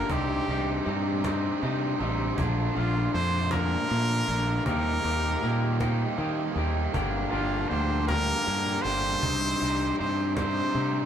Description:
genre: indie rock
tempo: 53 BPM (dotted quarters)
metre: 6/8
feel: straight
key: unclear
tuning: A4 = 440 Hz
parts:
  - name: brilliant trumpet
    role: melody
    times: 0.0-11.1 s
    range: F4 to C5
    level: -29 LUFS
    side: equal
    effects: none
  - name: overdriven combo organ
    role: sustained chords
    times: 0.0-11.1 s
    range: G4 to D6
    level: -43 LUFS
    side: left 1 dB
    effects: none
  - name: biting overdriven guitar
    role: riff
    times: 0.0-11.1 s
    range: G2 to Eb4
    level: -31 LUFS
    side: right 4 dB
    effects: none
  - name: electric guitar through a small old amp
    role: riff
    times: 0.0-11.1 s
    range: F3 to G4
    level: -32 LUFS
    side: left 5 dB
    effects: warbly pitch drift
  - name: modern bright fingered electric bass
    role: bass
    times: 0.1-11.0 s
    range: G1 to Eb3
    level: -29 LUFS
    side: equal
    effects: none
  - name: cajon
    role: drums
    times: 0.1-10.8 s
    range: none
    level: -34 LUFS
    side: equal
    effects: none
room: wet studio reverb, RT60 0.6 s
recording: band playing live in one room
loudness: -24 LUFS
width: side -9 dB against mid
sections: 0.0-11.1 A section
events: none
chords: 0.1 Cmadd9; 2.4 Bbmaj7; 4.7 Eb6; 6.9 Gm7; 9.2 Cmadd9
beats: | 0.09 1.24 | 2.38 3.52 | 4.66 5.80 | 6.94 8.07 | 9.21 10.35

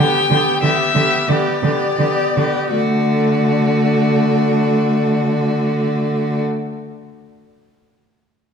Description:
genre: quick classical-period movement for string quartet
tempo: 78-94 BPM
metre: 4/4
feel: rubato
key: D major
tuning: A4 = 442 Hz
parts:
  - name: rich violin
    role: melody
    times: 0.0-6.4 s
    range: D5 to G5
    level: -20 LUFS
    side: left 6 dB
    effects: none
  - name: rich violin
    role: second line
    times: 0.0-6.4 s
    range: F#4 to G4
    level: -23 LUFS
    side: equal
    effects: none
  - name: clear viola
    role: accompaniment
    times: 0.0-6.4 s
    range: A3 to B3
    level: -20 LUFS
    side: equal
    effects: none
  - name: rich cello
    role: bass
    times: 0.0-6.4 s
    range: D3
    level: -19 LUFS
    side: right 3 dB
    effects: none
room: moderate scoring stage reverb, RT60 2.0 s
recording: small room ambience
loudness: -14 LUFS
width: side -6 dB against mid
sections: 0.0-2.7 A section; 2.7-5.7 B section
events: slowing down 0.0-2.7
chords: 0.0 G/D; 2.7 D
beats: 0.63 1.29 1.99 | 2.75 3.48 4.21 4.93

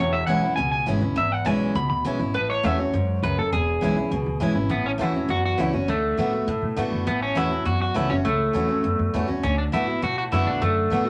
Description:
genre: rockabilly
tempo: 203 BPM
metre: 4/4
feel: straight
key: A major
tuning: A4 = 441 Hz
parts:
  - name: electric guitar through a small old amp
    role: melody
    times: 0.0-11.1 s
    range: A3 to B5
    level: -27 LUFS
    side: equal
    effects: none
  - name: picked steel-string acoustic guitar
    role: accompaniment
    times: 0.0-11.1 s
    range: E2 to F#4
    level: -28 LUFS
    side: equal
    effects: none
  - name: upright bass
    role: bass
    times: 0.0-11.1 s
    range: E1 to B2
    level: -29 LUFS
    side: equal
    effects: none
room: moderate club reverb, RT60 0.6 s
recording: none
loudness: -23 LUFS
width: mono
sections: 0.0-4.7 A section; 4.7-11.1 A section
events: none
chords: 0.0 E6; 2.3 A6; 3.5 E6; 4.7 A6; 5.9 D6; 7.1 A6; 9.4 D6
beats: 0.28 0.57 0.87 | 1.16 1.46 1.75 2.05 | 2.34 2.64 2.93 3.23 | 3.52 3.82 4.11 4.41 | 4.70 5.00 5.29 5.59 | 5.88 6.18 6.48 6.77 | 7.07 7.36 7.66 7.96 | 8.25 8.55 8.84 9.14 | 9.44 9.73 10.03 10.32 | 10.62 10.91

